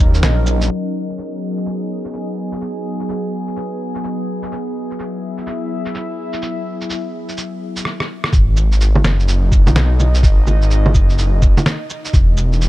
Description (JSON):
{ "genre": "future garage", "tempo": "126 BPM", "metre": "4/4", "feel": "swing 63% on 16ths", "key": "G# minor", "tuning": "A4 = 440 Hz", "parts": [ { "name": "warbly tape-like pad", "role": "sustained chords", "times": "0.0-12.7 s", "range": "F#3 to E5", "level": "-24 LUFS", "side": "left 1 dB", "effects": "chorus, built-in reverb, vintage 12-bit sampler grit, sidechain pumping" }, { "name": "swelling detuned saw bass", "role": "bass", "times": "0.0-0.7, 8.3-12.7 s", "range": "E1 to D#2", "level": "-14 LUFS", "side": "equal", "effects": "sidechain pumping" }, { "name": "electronic shaker, snare drum, cabasa, rim click and bongos", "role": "drums", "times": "0.1-12.7 s", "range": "none", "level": "-21 LUFS", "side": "right 1 dB", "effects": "none" }, { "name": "electronic kick drum", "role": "drums", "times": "8.3-12.3 s", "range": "none", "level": "-13 LUFS", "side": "equal", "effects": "none" } ], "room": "little or no reverb", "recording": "low-pass filter", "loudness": "-15 LUFS", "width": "side -16 dB against mid", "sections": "0.7-8.3 A section; 8.3-12.7 B section", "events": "filter sweep 0.7-8.3; drum fill 7.9-8.3", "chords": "0.0 D#m7; 0.7 G#m7; 4.5 Eadd9; 8.3 G#m7; 12.1 N.C." }